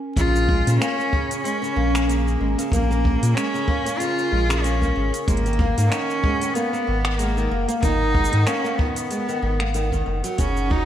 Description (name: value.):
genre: folktronica.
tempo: 94 BPM.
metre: 4/4.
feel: swing 56% on 16ths.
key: unclear.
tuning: A4 = 440 Hz.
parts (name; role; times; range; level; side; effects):
warbly tape-like pad; sustained chords; 0.0-10.9 s; Db4 to Ab5; -30 LUFS; equal; chorus, built-in reverb, vintage 12-bit sampler grit.
rich cello; melody; 0.2-10.9 s; Bb3 to F4; -24 LUFS; equal; ping-pong delay.
flamenco guitar; arpeggios; 0.2-10.9 s; Db3 to Bb3; -27 LUFS; equal; ping-pong delay.
warm sub bass; bass; 0.2-10.8 s; Gb1 to Bb2; -22 LUFS; equal; none.
kick drum; drums; 0.2-10.8 s; none; -24 LUFS; equal; none.
organic electronic drum kit; drums; 0.2-10.7 s; finger snaps, hi-hat, shaker; -30 LUFS; equal; none.
room: moderate lush hall reverb, RT60 1.5 s, small room ambience.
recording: dreamy mix soaked in reverb, vinyl crackle.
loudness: -19 LUFS.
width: side -10 dB against mid.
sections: 0.2-10.9 A section.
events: break 0.0.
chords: 0.2 Bbm7; 5.3 Abm9.